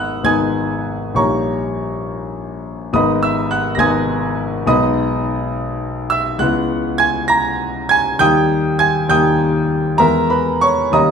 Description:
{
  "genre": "classical, romantic character piece for solo piano",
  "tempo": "68 BPM (dotted quarters)",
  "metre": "6/8",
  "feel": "uneven beats, rubato",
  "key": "G# minor",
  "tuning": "A4 = 440 Hz",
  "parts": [
    { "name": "warm grand piano", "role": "solo", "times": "0.0-11.1 s", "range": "G#1 to A#6", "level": "-14 LUFS", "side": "equal", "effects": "none" }
  ],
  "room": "wet stone room reverb, RT60 1.0 s",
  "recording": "none",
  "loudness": "-14 LUFS",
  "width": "side -6 dB against mid",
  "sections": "0.0-11.1 A section",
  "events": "none",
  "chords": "0.0 G#m; 1.2 D#7/A#; 3.0 G#m; 4.7 G#m/B; 6.4 C#m7; 8.2 D#; 10.0 E",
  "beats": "0.27 | 1.18 2.08 | 2.96 3.83 | 4.70 5.54 | 6.41 7.31 | 8.21 9.12 | 10.00 10.94"
}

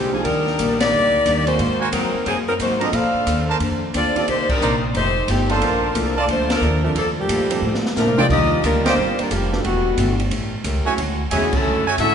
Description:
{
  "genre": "jazz, big band swing",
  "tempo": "179 BPM",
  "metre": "4/4",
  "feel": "swing 64% on 8ths",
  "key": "Bb major",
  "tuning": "A4 = 439 Hz",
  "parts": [
    { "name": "clear saxophone section", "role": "melody", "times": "0.0-12.1 s", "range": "D3 to F5", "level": "-20 LUFS", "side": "left 2 dB", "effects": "none" },
    { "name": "picked steel-string acoustic guitar", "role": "accompaniment", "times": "0.0-12.1 s", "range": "Ab2 to C5", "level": "-26 LUFS", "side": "left 2 dB", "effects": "none" },
    { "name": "upright bass", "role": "bass", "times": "0.0-12.1 s", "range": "E1 to Bb2", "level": "-24 LUFS", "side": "equal", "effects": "none" },
    { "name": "warm concert grand piano", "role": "accompaniment", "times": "0.1-11.0 s", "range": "Eb3 to A4", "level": "-29 LUFS", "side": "right 6 dB", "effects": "none" },
    { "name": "open jazz drum kit", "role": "drums", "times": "0.2-12.1 s", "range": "crash cymbal, hi-hat, kick drum, ride cymbal, snare drum, toms", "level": "-26 LUFS", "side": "right 1 dB", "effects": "none" },
    { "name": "clear trumpet section", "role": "stabs", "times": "1.8-12.0 s", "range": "D4 to Bb5", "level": "-25 LUFS", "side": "right 3 dB", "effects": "none" },
    { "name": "warm trombone section", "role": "second line", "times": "7.2-12.1 s", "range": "A2 to F#4", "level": "-26 LUFS", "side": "right 3 dB", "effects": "none" }
  ],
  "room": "wet scoring stage reverb, RT60 1.7 s",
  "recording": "recorded in a church or concert hall, nothing above 10.7 kHz",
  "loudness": "-17 LUFS",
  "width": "side -7 dB against mid",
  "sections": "0.0-8.3 A section; 8.3-12.1 B section",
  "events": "band accent 0.8, 4.4, 6.5, 8.8, 11.5; drum fill 7.6-8.3",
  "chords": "0.3 Ebmaj7; 1.6 Ab9; 2.9 Bbmaj9; 4.3 Cm9; 4.9 F9; 5.6 Bbmaj7; 8.3 Ebmaj9; 9.6 Em11; 10.3 A7b9; 11.0 Dmaj9#11",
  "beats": "| 0.25 0.59 0.92 1.26 | 1.59 1.93 2.27 2.60 | 2.94 3.27 3.61 3.94 | 4.28 4.61 4.95 5.28 | 5.62 5.95 6.29 6.62 | 6.96 7.29 7.63 7.96 | 8.30 8.63 8.97 9.31 | 9.64 9.98 10.31 10.65 | 10.98 11.32 11.65 11.99"
}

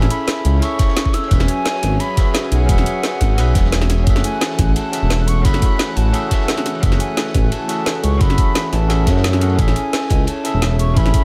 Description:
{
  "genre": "liquid drum and bass",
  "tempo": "174 BPM",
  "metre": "4/4",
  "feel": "straight",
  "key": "F# minor",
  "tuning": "A4 = 440 Hz",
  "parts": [
    { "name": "barky tine electric piano", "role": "accompaniment", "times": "0.0-11.2 s", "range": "C#4 to F#5", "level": "-26 LUFS", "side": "equal", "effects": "subtle chorus, dub echo" },
    { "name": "lush unison pad", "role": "sustained chords", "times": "0.0-11.2 s", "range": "E3 to F#5", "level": "-31 LUFS", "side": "equal", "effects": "chorus" },
    { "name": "smooth synth bass", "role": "bass", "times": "0.0-11.1 s", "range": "E1 to F#2", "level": "-19 LUFS", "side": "equal", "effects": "none" },
    { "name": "crunchy breakbeat drum kit", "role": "drums", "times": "0.0-11.2 s", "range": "ride cymbal, snare drum", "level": "-34 LUFS", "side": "equal", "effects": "high-pass filter on cymbals, small room ambience, high-pass filter on snare, high-pass filter on room, tape echo" },
    { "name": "drum and bass drum kit", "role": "drums", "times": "0.0-11.2 s", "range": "hi-hat, snare drum", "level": "-25 LUFS", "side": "equal", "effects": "overdrive, small room ambience" },
    { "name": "hollow concert flute", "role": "melody", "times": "0.1-11.2 s", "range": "F#5 to E6", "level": "-28 LUFS", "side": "equal", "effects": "dub echo" },
    { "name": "electronic kick drum", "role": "drums", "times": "0.8-11.2 s", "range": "none", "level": "-18 LUFS", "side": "equal", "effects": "overdrive, small room ambience" }
  ],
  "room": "small room ambience",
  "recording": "echo-heavy mix",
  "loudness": "-17 LUFS",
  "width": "mono",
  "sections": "0.0-4.1 A section; 4.1-11.2 A section",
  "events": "drop 0.0-4.1, 4.1-11.2; kick drops out 3.7-4.1",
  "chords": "0.0 Amaj7; 1.3 E69; 4.1 F#m9; 9.6 Amaj7",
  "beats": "0.28 0.62 0.97 | 1.31 1.66 2.00 2.35 | 2.69 3.04 3.38 3.73 | 4.07 4.41 4.76 5.10 | 5.45 5.79 6.14 6.48 | 6.83 7.17 7.52 7.86 | 8.21 8.55 8.90 9.24 | 9.59 9.93 10.28 10.62 | 10.97"
}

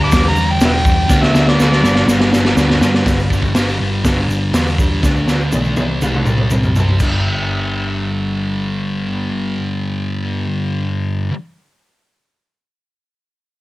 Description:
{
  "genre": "garage rock duo or trio",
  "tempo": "122 BPM",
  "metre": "4/4",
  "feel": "straight",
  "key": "unclear",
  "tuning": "A4 = 436 Hz",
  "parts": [
    { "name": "overdriven harmonica", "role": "melody", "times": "0.0-2.1 s", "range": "A4 to D6", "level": "-18 LUFS", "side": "equal", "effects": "none" },
    { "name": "thick fuzz guitar", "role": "riff", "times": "0.0-11.3 s", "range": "G2 to D4", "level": "-19 LUFS", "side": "equal", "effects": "distortion" },
    { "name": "hollow-body short-scale picked electric bass", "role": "bass", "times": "0.0-11.3 s", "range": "E1 to G2", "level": "-20 LUFS", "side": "equal", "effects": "tube saturation" },
    { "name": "crunchy breakbeat drum kit", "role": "drums", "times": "0.1-7.1 s", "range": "crash cymbal, hi-hat, kick drum, snare drum, toms", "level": "-15 LUFS", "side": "equal", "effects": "cassette tape" },
    { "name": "egg shaker", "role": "percussion", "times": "0.1-7.2 s", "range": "none", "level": "-34 LUFS", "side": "right 3 dB", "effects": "none" }
  ],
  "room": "little or no reverb",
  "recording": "home recording on cassette",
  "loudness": "-13 LUFS",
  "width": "side -19 dB against mid",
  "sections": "0.0-3.1 A section; 3.1-7.0 B section; 7.0-11.0 C section",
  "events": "drum fill 1.1-3.1, 5.0-7.0",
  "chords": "0.0 G5; 1.1 D5; 1.8 G5; 5.0 D5; 5.8 C5; 7.0 G5",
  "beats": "0.13 0.62 | 1.11 1.59 2.08 2.57 | 3.06 3.55 4.04 4.53 | 5.03 5.52 6.01 6.51 | 7.00 7.50 7.99 8.49 | 8.99 9.48 9.98 10.47"
}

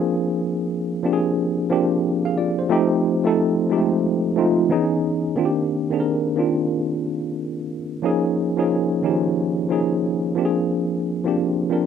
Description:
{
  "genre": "R&B",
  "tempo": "90 BPM",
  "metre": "4/4",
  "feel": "swing 64% on 16ths",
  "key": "C minor",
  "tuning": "A4 = 440 Hz",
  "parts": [
    { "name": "tine electric piano", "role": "solo", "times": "0.0-11.9 s", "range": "Eb3 to F5", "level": "-19 LUFS", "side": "equal", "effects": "overdrive, medium stereo tremolo" }
  ],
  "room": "digital ambience",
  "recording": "rough home demo mix",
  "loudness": "-19 LUFS",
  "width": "side -7 dB against mid",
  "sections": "0.0-5.4 A section; 5.4-11.9 B section",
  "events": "none",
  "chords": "0.0 Bb9; 2.7 F9; 4.7 Dbm9; 5.4 Cm9; 8.0 Db69; 10.4 Bb9",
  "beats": "| 0.03 0.70 1.36 2.03 | 2.70 3.36 4.03 4.70 | 5.36 6.03 6.70 7.36 | 8.03 8.70 9.36 10.03 | 10.70 11.36"
}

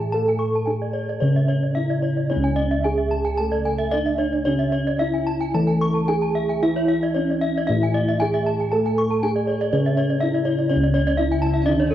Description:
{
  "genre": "Balinese gamelan",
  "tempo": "111-124 BPM",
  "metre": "4/4",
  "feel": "straight",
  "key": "C# pelog",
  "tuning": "A4 = 440 Hz",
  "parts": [
    { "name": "gamelan-type bronze metallophone", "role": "melody", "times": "0.0-11.9 s", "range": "C#4 to A4", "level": "-23 LUFS", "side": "equal", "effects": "cassette tape" },
    { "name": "gamelan-type bronze metallophone", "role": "accompaniment", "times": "0.0-11.9 s", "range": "C#3 to A3", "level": "-29 LUFS", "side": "right 1 dB", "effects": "cassette tape" },
    { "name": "gamelan-type bronze metallophone", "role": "arpeggios", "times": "0.0-11.9 s", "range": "C#5 to A5", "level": "-30 LUFS", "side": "right 5 dB", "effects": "cassette tape" },
    { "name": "gamelan-type bossed gongs", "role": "bass", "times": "0.0-11.9 s", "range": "C#2 to A4", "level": "-23 LUFS", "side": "equal", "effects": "none" },
    { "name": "gamelan-type bronze metallophone", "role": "arpeggios", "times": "0.1-11.9 s", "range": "A4 to C#6", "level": "-28 LUFS", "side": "left 3 dB", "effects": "cassette tape" },
    { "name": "nylon-string guitar", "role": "second line", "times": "11.5-11.9 s", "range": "C#4 to E4", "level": "-26 LUFS", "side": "right 3 dB", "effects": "cassette tape" }
  ],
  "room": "light reverb, small room ambience",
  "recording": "home recording on cassette",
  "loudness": "-19 LUFS",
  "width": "side -12 dB against mid",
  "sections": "0.0-10.7 A section; 10.7-11.9 B section",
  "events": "none",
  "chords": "none",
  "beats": "| 0.14 0.68 1.22 1.76 | 2.30 2.84 3.38 3.92 | 4.46 5.00 5.54 6.09 | 6.63 7.16 7.69 8.21 | 8.73 9.23 9.73 10.22 | 10.71 11.19 11.68"
}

